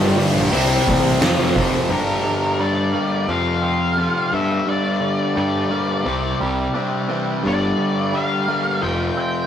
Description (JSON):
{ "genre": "quiet-loud alternative rock", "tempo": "86 BPM", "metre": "4/4", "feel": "straight", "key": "G minor", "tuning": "A4 = 437 Hz", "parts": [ { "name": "soft string machine", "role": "sustained chords", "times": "0.0-1.9 s", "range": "D3 to D5", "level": "-31 LUFS", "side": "equal", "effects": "none" }, { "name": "biting overdriven guitar", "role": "riff", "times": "0.0-9.5 s", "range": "F2 to C4", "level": "-23 LUFS", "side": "left 4 dB", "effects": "none" }, { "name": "cranked stack guitar", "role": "riff", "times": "0.0-1.9 s", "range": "F2 to C4", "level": "-21 LUFS", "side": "left 1 dB", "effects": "overdrive" }, { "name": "distorted electric guitar", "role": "riff", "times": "0.0-1.9 s", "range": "F2 to C4", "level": "-23 LUFS", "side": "right 3 dB", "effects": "distortion" }, { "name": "fuzz picked electric bass", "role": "bass", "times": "0.0-9.1 s", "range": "F1 to G2", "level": "-25 LUFS", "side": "equal", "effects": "overdrive" }, { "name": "oversized low-tuned drum kit", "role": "drums", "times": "0.2-1.7 s", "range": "hi-hat, kick drum, snare drum", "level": "-22 LUFS", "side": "right 1 dB", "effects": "none" }, { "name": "octave-fuzz lead guitar", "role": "melody", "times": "1.9-9.5 s", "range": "Bb4 to G5", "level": "-24 LUFS", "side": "left 2 dB", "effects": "distortion, tape echo" }, { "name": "twangy electric guitar", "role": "arpeggios", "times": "1.9-9.5 s", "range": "G2 to F4", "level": "-24 LUFS", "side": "right 4 dB", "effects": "tape echo" } ], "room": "moderate stone room reverb, RT60 1.2 s", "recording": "rough rehearsal-room recording", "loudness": "-17 LUFS", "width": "side -9 dB against mid", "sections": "0.0-1.9 A section; 1.9-9.5 B section", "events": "half time 1.9-9.5", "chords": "0.0 Gm; 0.5 Cadd9; 1.2 Fsus4; 1.9 Gm; 3.3 F5; 4.3 Gm; 6.1 Cadd9; 7.5 Gm; 8.8 F5" }